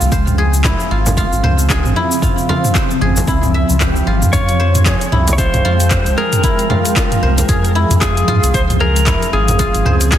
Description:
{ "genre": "organic downtempo", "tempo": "114 BPM", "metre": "4/4", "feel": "swing 59% on 16ths", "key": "unclear", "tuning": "A4 = 440 Hz", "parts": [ { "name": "granular cloud pad", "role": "sustained chords", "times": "0.0-10.2 s", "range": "Db3 to G5", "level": "-21 LUFS", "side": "right 1 dB", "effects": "built-in reverb, sidechain pumping" }, { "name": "guzheng", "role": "arpeggios", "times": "0.0-10.2 s", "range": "E4 to E5", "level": "-20 LUFS", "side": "equal", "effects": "tape echo" }, { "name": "round analog bass", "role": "bass", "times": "0.0-10.2 s", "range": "Ab1 to Ab2", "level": "-15 LUFS", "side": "equal", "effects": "tube saturation, sidechain pumping" }, { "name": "deep house drum kit", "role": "drums", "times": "0.0-10.2 s", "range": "handclaps, hi-hat, shaker, toms", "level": "-19 LUFS", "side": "equal", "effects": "overdrive" }, { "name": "quartz singing bowl", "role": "texture", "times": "0.0-10.2 s", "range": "none", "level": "barely audible", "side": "none", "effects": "none" }, { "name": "electronic kick drum", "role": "drums", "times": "0.1-10.2 s", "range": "none", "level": "-18 LUFS", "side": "equal", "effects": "overdrive" }, { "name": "frame drum", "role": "percussion", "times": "1.1-9.6 s", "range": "none", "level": "-24 LUFS", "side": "right 2 dB", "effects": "none" }, { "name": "clean lap steel guitar", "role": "melody", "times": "4.3-10.2 s", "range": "Ab4 to Db5", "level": "-19 LUFS", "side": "left 1 dB", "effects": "vintage 12-bit sampler grit, tape echo" } ], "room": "light reverb, digital ambience", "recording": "dense, heavily limited modern master", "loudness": "-12 LUFS", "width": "side -11 dB against mid", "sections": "0.0-10.2 A section", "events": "none", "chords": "0.1 Dbmaj7; 4.3 Fmadd9; 8.5 Dbmaj7" }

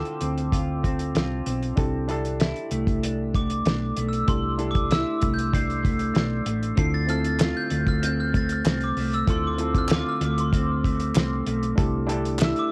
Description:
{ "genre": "indie pop, bedroom pop", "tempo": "96 BPM", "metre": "4/4", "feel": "straight", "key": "C major", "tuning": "A4 = 440 Hz", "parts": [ { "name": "glockenspiel with brass mallets", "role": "melody", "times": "0.0-12.7 s", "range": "C6 to C7", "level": "-33 LUFS", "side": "equal", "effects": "analog chorus, cassette tape, tape echo" }, { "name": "electric guitar through a small old amp", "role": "accompaniment", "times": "0.0-12.7 s", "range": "D3 to A4", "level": "-31 LUFS", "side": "equal", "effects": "subtle chorus, vibrato effect, cassette tape" }, { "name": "reed electric piano", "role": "accompaniment", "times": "0.0-12.7 s", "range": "C4 to A4", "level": "-36 LUFS", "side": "equal", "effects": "cassette tape" }, { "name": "cloth-damped thuddy drum kit", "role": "drums", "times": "0.1-12.7 s", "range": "hi-hat, kick drum, snare drum", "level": "-27 LUFS", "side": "equal", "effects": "cassette tape" }, { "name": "hollow-body short-scale fingered electric bass", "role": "bass", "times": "0.2-12.5 s", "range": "A1 to D2", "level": "-31 LUFS", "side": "equal", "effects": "none" }, { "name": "group handclap", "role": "percussion", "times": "7.4-12.5 s", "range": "none", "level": "-36 LUFS", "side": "equal", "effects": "none" } ], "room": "light reverb", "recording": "home recording on cassette", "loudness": "-24 LUFS", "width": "mono", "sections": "0.0-12.7 A section", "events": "glockenspiel solo 0.0-12.7", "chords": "0.0 Dm7; 1.8 C69; 6.8 Dm7; 11.8 C69" }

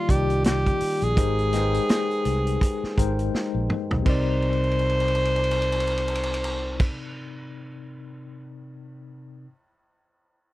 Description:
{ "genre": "lush 1970s-style soul", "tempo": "83 BPM", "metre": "4/4", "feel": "swing 58% on 16ths", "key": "C minor", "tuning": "A4 = 439 Hz", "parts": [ { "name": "breathy tenor saxophone", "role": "melody", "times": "0.0-6.9 s", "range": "F4 to C5", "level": "-25 LUFS", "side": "equal", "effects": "none" }, { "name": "tine electric piano", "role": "accompaniment", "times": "0.0-9.5 s", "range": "C3 to G5", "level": "-29 LUFS", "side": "left 4 dB", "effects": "medium stereo tremolo" }, { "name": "fingered electric bass", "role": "bass", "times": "0.1-6.9 s", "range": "Ab1 to C2", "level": "-26 LUFS", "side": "right 1 dB", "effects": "none" }, { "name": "vintage drum kit", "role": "drums", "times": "0.1-8.4 s", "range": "crash cymbal, hi-hat, kick drum, ride cymbal, snare drum, toms", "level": "-26 LUFS", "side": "equal", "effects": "none" } ], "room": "little or no reverb", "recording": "dry, close 1970s-style studio recording", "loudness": "-21 LUFS", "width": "side -16 dB against mid", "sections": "0.0-4.1 A section; 4.1-7.0 B section", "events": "drum fill 3.3-4.1, 4.4-6.8", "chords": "0.0 Ebmaj7; 1.2 Abmaj7; 4.1 Cm7" }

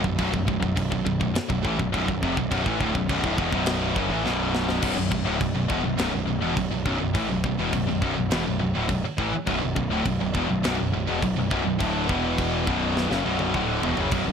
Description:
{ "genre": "heavy metal", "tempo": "103 BPM", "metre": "4/4", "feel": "straight", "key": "B minor", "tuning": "A4 = 440 Hz", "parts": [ { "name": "scooped high-gain guitar", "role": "riff", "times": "0.0-14.3 s", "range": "B1 to E3", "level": "-27 LUFS", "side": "right 8 dB", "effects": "distortion" }, { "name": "thick fuzz guitar", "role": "riff", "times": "0.0-14.3 s", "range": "B1 to E3", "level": "-31 LUFS", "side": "equal", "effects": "distortion" }, { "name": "tight distorted guitar", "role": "riff", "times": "0.0-14.3 s", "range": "B1 to E3", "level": "-28 LUFS", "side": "left 12 dB", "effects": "distortion" }, { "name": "fuzz picked electric bass", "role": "bass", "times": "0.0-14.3 s", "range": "B0 to A1", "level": "-30 LUFS", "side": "equal", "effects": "overdrive" }, { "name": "tight metal drum kit", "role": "drums", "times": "0.0-14.3 s", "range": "crash cymbal, kick drum, snare drum, toms", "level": "-30 LUFS", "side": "equal", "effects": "none" } ], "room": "studio ambience", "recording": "none", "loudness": "-22 LUFS", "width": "side -7 dB against mid", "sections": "0.0-4.8 A section; 4.8-14.3 B section", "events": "drum fill 4.3-4.8, 13.0-14.1", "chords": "0.0 Bm; 12.1 E5; 12.7 Bm" }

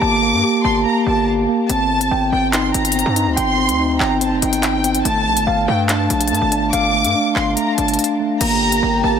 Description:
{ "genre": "hip hop, drill", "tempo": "143 BPM", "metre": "4/4", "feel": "half-time", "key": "G minor", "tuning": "A4 = 440 Hz", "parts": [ { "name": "dark symphonic violin section", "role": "second line", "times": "0.0-9.2 s", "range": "G5 to D6", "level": "-20 LUFS", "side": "equal", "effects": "tape echo" }, { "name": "mellow tine electric piano", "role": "arpeggios", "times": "0.0-9.2 s", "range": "A3 to Bb5", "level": "-18 LUFS", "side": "equal", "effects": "medium stereo tremolo, tape echo" }, { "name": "distorted 808-style bass", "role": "bass", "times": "0.0-9.2 s", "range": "F1 to G2", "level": "-22 LUFS", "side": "left 1 dB", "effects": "distortion" }, { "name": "drill drum kit", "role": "drums", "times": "1.7-8.8 s", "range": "crash cymbal, handclaps, hi-hat", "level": "-22 LUFS", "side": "left 2 dB", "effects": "none" }, { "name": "sweeping resonant pad", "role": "sustained chords", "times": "8.4-9.2 s", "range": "G4 to G5", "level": "-23 LUFS", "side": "right 4 dB", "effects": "chorus" } ], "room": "light reverb, digital ambience", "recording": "dense, heavily limited modern master", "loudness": "-14 LUFS", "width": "side -7 dB against mid", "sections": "0.0-8.4 A section", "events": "none", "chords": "0.0 Gmadd9; 1.7 Cm/G; 5.1 Dm/G; 8.4 Gmadd9" }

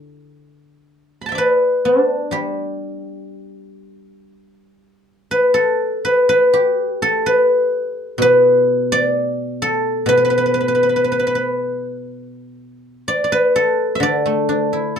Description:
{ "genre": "chinese traditional, Chinese solo plucked strings", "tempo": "59-65 BPM", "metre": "2/4", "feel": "rubato", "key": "G gong mode", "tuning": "A4 = 440 Hz", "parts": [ { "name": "guzheng", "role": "solo", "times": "0.0-15.0 s", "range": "B2 to B5", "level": "-15 LUFS", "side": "equal", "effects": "none" } ], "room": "light reverb", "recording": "dark, warm production", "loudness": "-14 LUFS", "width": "side -7 dB against mid", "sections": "0.0-4.3 A section; 4.3-15.0 B section", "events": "none", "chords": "none" }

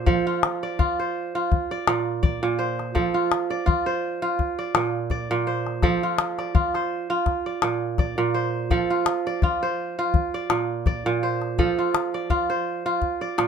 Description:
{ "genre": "west african traditional, West African string and xylophone music", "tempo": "83 BPM", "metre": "4/4", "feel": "swing 55% on 16ths", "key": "F major", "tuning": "A4 = 440 Hz", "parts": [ { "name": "kora", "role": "arpeggios", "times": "0.0-13.5 s", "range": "Bb2 to D5", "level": "-23 LUFS", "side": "right 3 dB", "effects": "none" }, { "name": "calabash", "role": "percussion", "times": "0.1-13.5 s", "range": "none", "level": "-22 LUFS", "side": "left 4 dB", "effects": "none" } ], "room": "light reverb", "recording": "none", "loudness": "-22 LUFS", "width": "side -7 dB against mid", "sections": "0.0-13.5 A section", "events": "none", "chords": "0.1 F; 1.5 Bb; 3.0 F; 4.4 Bb; 5.8 F; 7.3 Bb; 8.7 F; 10.1 Bb; 11.6 F" }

